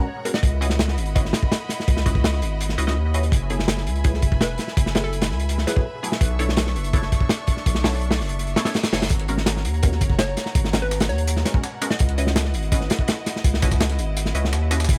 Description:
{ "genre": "drum and bass, jungle", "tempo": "166 BPM", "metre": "4/4", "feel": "straight", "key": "unclear", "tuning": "A4 = 440 Hz", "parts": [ { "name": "bright studio string section", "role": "sustained chords", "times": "0.0-15.0 s", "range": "D4 to C#6", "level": "-36 LUFS", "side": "equal", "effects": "vintage 12-bit sampler grit" }, { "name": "filtered dub chord stab", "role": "stabs", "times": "0.0-14.8 s", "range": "F#3 to D#5", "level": "-33 LUFS", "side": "equal", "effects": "phaser, dub echo" }, { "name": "hollow square pluck", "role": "melody", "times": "0.3-0.5, 4.4-5.9, 10.2-12.0 s", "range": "A4 to D#5", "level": "-35 LUFS", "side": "equal", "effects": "subtle chorus, dub echo" }, { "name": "crunchy breakbeat drum kit", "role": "drums", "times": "0.3-15.0 s", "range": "hi-hat, kick drum, snare drum", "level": "-24 LUFS", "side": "equal", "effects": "none" }, { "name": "saturated sub bass", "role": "bass", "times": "0.4-15.0 s", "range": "E1 to D#2", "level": "-26 LUFS", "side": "equal", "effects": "none" }, { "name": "reverse cymbal", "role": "sound effects", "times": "8.5-9.1 s", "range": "none", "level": "-37 LUFS", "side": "equal", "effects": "none" }, { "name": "breakbeat sampler-style drum kit", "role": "drums", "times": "9.1-15.0 s", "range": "hi-hat, snare drum, tambourine", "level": "-34 LUFS", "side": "equal", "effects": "high-pass filter on snare, high-pass filter on perc, high-pass filter on hats, high-pass filter on room" } ], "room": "small room ambience", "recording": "none", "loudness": "-22 LUFS", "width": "mono", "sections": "0.0-15.0 A section", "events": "none", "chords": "0.4 C#m11; 3.3 F#m11; 6.2 Bm11; 9.1 G#m11; 12.0 C#m11" }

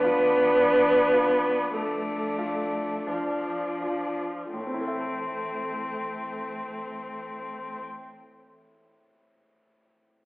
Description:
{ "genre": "classical, slow romantic movement for piano quartet", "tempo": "38-56 BPM", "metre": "4/4", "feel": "rubato", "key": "A minor", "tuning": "A4 = 440 Hz", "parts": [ { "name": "warm violin", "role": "melody", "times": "0.0-7.8 s", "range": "C4 to D4", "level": "-30 LUFS", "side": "left 2 dB", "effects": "none" }, { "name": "warm cello", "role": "second line", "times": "0.0-7.8 s", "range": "E3 to F3", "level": "-45 LUFS", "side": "right 1 dB", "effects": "none" }, { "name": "clear concert grand piano", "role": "accompaniment", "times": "0.0-10.2 s", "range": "A2 to E5", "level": "-34 LUFS", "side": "equal", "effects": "none" }, { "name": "warm viola", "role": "accompaniment", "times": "0.0-7.8 s", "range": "F3 to B3", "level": "-26 LUFS", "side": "right 1 dB", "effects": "none" } ], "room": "wet recital hall reverb, RT60 1.7 s", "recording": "heard from further back in the room, telephone sound", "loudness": "-24 LUFS", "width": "side -22 dB against mid", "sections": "0.0-4.5 A section; 4.5-9.8 B section", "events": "slowing down 0.0-4.5", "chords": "0.0 Dm/A; 4.5 Am" }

